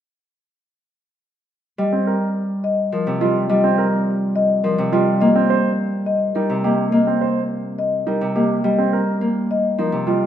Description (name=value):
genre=classical, minimalist pattern music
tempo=105 BPM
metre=3/4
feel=straight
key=C minor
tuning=A4 = 441 Hz
part: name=marimba with soft mallets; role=melody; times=1.8-10.3 s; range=Bb4 to Eb5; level=-22 LUFS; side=left 5 dB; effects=none
part: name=Celtic harp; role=accompaniment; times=1.8-10.3 s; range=C3 to Bb3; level=-19 LUFS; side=right 1 dB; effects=none
part: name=clear concert grand piano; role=arpeggios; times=1.9-10.3 s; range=C4 to C5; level=-24 LUFS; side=right 6 dB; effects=none
room=wet recital hall reverb, RT60 1.8 s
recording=none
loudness=-17 LUFS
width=side -10 dB against mid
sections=1.8-10.3 A section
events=none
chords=1.8 Cm; 5.2 Eb; 8.6 Cm7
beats=| 1.79 2.36 2.93 | 3.50 4.07 4.64 | 5.21 5.79 6.36 | 6.93 7.50 8.07 | 8.64 9.21 9.79